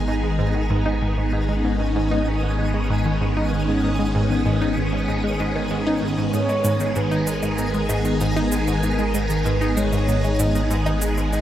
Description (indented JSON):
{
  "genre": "ambient, sequencer-driven space music",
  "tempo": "96 BPM",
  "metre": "4/4",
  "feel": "straight",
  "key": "G# minor",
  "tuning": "A4 = 440 Hz",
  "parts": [
    { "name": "phased string machine", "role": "sustained chords", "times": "0.0-11.4 s", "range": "D#3 to G#4", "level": "-23 LUFS", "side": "equal", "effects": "ensemble chorus, phaser" },
    { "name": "analog pluck", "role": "riff", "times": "0.0-11.4 s", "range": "G#2 to D#4", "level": "-24 LUFS", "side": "equal", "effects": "chorus, phaser, analog delay" },
    { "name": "warm sub bass", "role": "bass", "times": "0.0-11.4 s", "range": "G#1", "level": "-26 LUFS", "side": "equal", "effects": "none" },
    { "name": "twinkling granular texture", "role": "texture", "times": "0.0-11.4 s", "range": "G#4 to D#6", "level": "-33 LUFS", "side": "equal", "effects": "built-in reverb" },
    { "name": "mellow horn-like synth lead", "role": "melody", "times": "6.3-11.4 s", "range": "G#4 to D#5", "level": "-28 LUFS", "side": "right 1 dB", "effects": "chorus, phaser, analog delay" },
    { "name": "cabasa and woodblock", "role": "percussion", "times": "6.3-11.4 s", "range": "none", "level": "-34 LUFS", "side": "right 2 dB", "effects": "overdrive" }
  ],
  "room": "wet concert hall reverb, RT60 1.9 s",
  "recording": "none",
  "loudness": "-19 LUFS",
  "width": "side -12 dB against mid",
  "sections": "0.0-11.4 A section",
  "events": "none",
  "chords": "0.0 G#m"
}